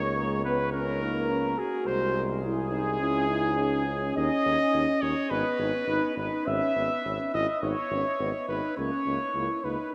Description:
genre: classical, brass quintet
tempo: 105 BPM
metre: 4/4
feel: straight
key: unclear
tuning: A4 = 440 Hz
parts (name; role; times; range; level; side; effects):
- mellow cornet; melody; 0.0-9.9 s; G#4 to E5; -33 LUFS; equal; none
- clear trumpet; second line; 0.0-9.9 s; G#4 to E5; -34 LUFS; equal; none
- warm French horn; accompaniment; 0.0-9.8 s; G#3 to E4; -38 LUFS; equal; none
- clear tuba; bass; 0.0-9.8 s; G#1 to D#2; -35 LUFS; equal; none
- warm euphonium; accompaniment; 0.2-9.9 s; A#3 to F#4; -34 LUFS; equal; none
room: wet cathedral reverb, RT60 6.0 s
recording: in a vast, echoing space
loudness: -28 LUFS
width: mono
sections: 0.0-9.9 A section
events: none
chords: 0.0 C#5; 1.9 G#/B#; 3.0 C#m; 4.2 C#sus2/D#; 5.3 G#m; 6.5 C#m/G#; 7.6 G#m; 8.8 C#m13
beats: 0.16 0.73 1.30 | 1.86 2.43 3.00 3.57 | 4.16 4.73 5.30 5.88 | 6.47 7.05 7.62 8.20 | 8.77 9.34 9.92

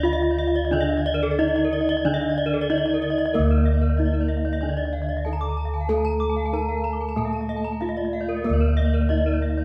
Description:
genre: Balinese gamelan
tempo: 94 BPM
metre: 4/4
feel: straight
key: D pelog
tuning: A4 = 441 Hz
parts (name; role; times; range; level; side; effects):
- gamelan-type bronze metallophone; melody; 0.0-9.6 s; Bb3-20c to Bb4-20c; -29 LUFS; equal; none
- gamelan-type bronze metallophone; accompaniment; 0.0-9.6 s; D3 to Bb3-20c; -33 LUFS; equal; none
- gamelan-type bronze metallophone; arpeggios; 0.0-9.5 s; Bb4-20c to D6; -32 LUFS; equal; none
- gamelan-type bossed gongs; bass; 0.0-9.6 s; D2 to Bb4-20c; -27 LUFS; equal; none
- gamelan-type bronze metallophone; arpeggios; 0.1-9.6 s; A4-30c to D6; -31 LUFS; equal; none
room: wet recital hall reverb, RT60 1.4 s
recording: recorded in a church or concert hall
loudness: -23 LUFS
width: mono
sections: 0.0-3.3 A section; 3.3-9.6 B section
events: none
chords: none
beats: 0.04 | 0.72 1.39 2.05 2.70 | 3.35 3.98 4.62 5.26 | 5.90 6.53 7.17 7.81 | 8.45 9.09

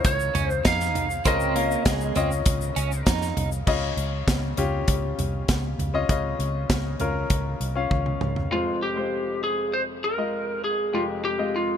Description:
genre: piano-driven pop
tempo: 99 BPM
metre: 4/4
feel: straight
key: unclear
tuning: A4 = 440 Hz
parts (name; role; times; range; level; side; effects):
- lightly driven lead guitar; melody; 0.0-3.0, 8.5-11.8 s; F4 to F5; -26 LUFS; equal; none
- clear concert grand piano; accompaniment; 0.0-11.8 s; F1 to F5; -29 LUFS; left 5 dB; none
- vintage muted fingered electric bass; bass; 0.0-8.5 s; C2 to F2; -28 LUFS; equal; none
- modern studio drum kit; drums; 0.0-8.5 s; crash cymbal, hi-hat, kick drum, snare drum, toms; -26 LUFS; equal; none
- tube shaker; percussion; 0.0-3.7 s; none; -39 LUFS; left 10 dB; none
- twelve-string electric guitar; riff; 0.3-3.5 s; Ab3 to Eb4; -31 LUFS; right 11 dB; tremolo
room: light reverb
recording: none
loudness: -22 LUFS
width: side -8 dB against mid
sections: 0.0-3.7 A section; 3.7-8.5 B section; 8.5-11.8 C section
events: drum fill 7.9-8.5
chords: 0.0 Dbadd9; 8.5 Fm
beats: 0.05 0.65 | 1.25 1.86 2.46 3.07 | 3.67 4.28 4.88 5.49 | 6.09 6.70 7.30 7.91 | 8.52 9.12 9.73 10.33 | 10.94 11.54

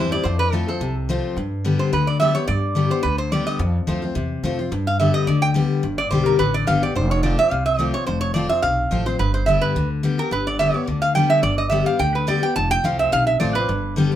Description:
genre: bluegrass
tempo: 214 BPM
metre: 4/4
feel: swing 54% on 8ths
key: G mixolydian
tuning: A4 = 440 Hz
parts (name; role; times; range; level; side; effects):
- lap resonator guitar; melody; 0.0-13.9 s; A4 to A5; -21 LUFS; right 2 dB; none
- picked steel-string acoustic guitar; accompaniment; 0.0-14.2 s; F2 to G4; -21 LUFS; left 4 dB; none
- upright bass; bass; 0.0-14.1 s; F1 to G2; -25 LUFS; right 1 dB; none
room: light reverb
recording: minimal, uncompressed stereo recording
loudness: -18 LUFS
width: side -11 dB against mid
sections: 0.0-5.8 A section; 5.8-14.2 B section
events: resonator guitar played with a steel bar solo 5.8-14.2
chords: 0.3 F; 1.4 G; 3.6 F; 4.7 G; 7.0 F; 9.2 G; 12.6 F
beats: | 0.25 0.53 0.81 1.09 | 1.37 1.65 1.93 2.21 | 2.48 2.76 3.04 3.32 | 3.60 3.88 4.16 4.44 | 4.72 5.00 5.28 5.56 | 5.84 6.12 6.40 6.68 | 6.96 7.24 7.52 7.80 | 8.08 8.36 8.64 8.91 | 9.20 9.47 9.76 10.04 | 10.32 10.60 10.88 11.16 | 11.44 11.72 12.00 12.28 | 12.56 12.84 13.12 13.40 | 13.69 13.97

